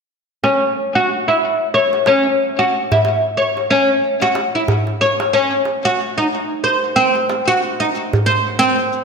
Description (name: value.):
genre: organic downtempo.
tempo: 92 BPM.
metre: 4/4.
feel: swing 59% on 16ths.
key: unclear.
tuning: A4 = 437 Hz.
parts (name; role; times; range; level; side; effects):
oud; arpeggios; 0.4-8.8 s; B#3 to C#5; -14 LUFS; equal; low-pass filter, ping-pong delay.
cabasa; drums; 0.4-9.0 s; none; -46 LUFS; left 8 dB; none.
darbuka; percussion; 0.4-8.9 s; none; -22 LUFS; right 1 dB; none.
room: wet lush hall reverb, RT60 1.9 s, studio reverb.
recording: bright 1980s-style digital production.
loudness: -14 LUFS.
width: side -5 dB against mid.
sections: 0.4-9.0 A section.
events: none.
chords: none.